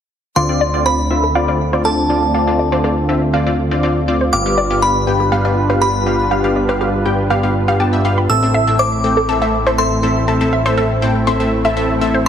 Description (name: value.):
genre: house.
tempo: 121 BPM.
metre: 4/4.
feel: straight.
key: unclear.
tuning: A4 = 440 Hz.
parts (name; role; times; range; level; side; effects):
glassy synth bell; melody; 0.4-12.3 s; A5 to E6; -19 LUFS; equal; chorus, phaser, ping-pong delay.
supersaw pad; sustained chords; 0.4-12.3 s; D3 to B4; -21 LUFS; right 1 dB; low-pass filter.
analog pluck; arpeggios; 0.4-12.3 s; G4 to C6; -21 LUFS; right 1 dB; chorus, ping-pong delay.
supersaw stab; stabs; 0.4-12.3 s; G2 to A5; -18 LUFS; left 2 dB; low-pass filter, ping-pong delay.
fat analog bass; bass; 0.4-12.3 s; G1 to D2; -20 LUFS; equal; none.
room: moderate recital hall reverb, RT60 1.6 s.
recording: heavily compressed radio sound.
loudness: -13 LUFS.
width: side -8 dB against mid.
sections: 0.4-12.3 A section.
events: filter sweep on synth pluck 0.4-12.3; filter sweep on supersaw synth 0.4-12.3.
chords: 0.4 Dm7; 4.3 G7; 8.3 Am.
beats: | 0.36 0.86 1.35 1.85 | 2.35 2.84 3.34 3.83 | 4.33 4.82 5.32 5.82 | 6.31 6.81 7.30 7.80 | 8.29 8.79 9.29 9.78 | 10.28 10.78 11.27 11.77 | 12.26.